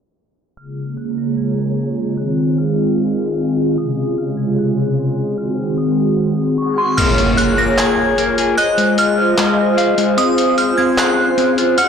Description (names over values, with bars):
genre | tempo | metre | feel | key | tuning
hip hop, atmospheric cloud-rap | 150 BPM | 4/4 | half-time | Bb minor | A4 = 437 Hz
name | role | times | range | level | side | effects
glassy synth bell | melody | 0.6-11.9 s | C6 to Bb6 | -18 LUFS | right 1 dB | chorus, tape echo
hollow soft pad | sustained chords | 0.6-11.9 s | C3 to Eb5 | -16 LUFS | right 1 dB | chorus
wind-like tuned noise texture | texture | 1.1-11.9 s | Db4 to C6 | -28 LUFS | left 3 dB | built-in reverb
clean electric guitar | arpeggios | 7.0-11.9 s | Ab3 to Gb5 | -18 LUFS | left 6 dB | tape echo
lo-fi sampler-style drum kit | drums | 7.0-11.9 s | crash cymbal, handclaps, hi-hat | -21 LUFS | equal | none
impact | sound effects | 7.0-8.6 s | none | -21 LUFS | equal | none
room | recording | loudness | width
light reverb, digital ambience | blown-out, overdriven recording, overdrive, low-pass filter | -14 LUFS | side -7 dB against mid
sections
0.6-7.0 A section; 7.0-11.9 B section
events
filter sweep 0.6-7.0; kick muted 7.0-11.9; impact 7.0-8.6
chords
0.6 Bbm7; 2.2 Fm7; 3.8 Dbmaj7; 5.4 Ab7; 7.0 Bbm7; 8.6 Fm7; 10.2 Dbmaj7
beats
| 0.58 0.98 1.38 1.78 | 2.18 2.58 2.98 3.38 | 3.78 4.18 4.58 4.98 | 5.38 5.78 6.18 6.58 | 6.98 7.38 7.78 8.18 | 8.58 8.98 9.38 9.78 | 10.18 10.58 10.98 11.38 | 11.78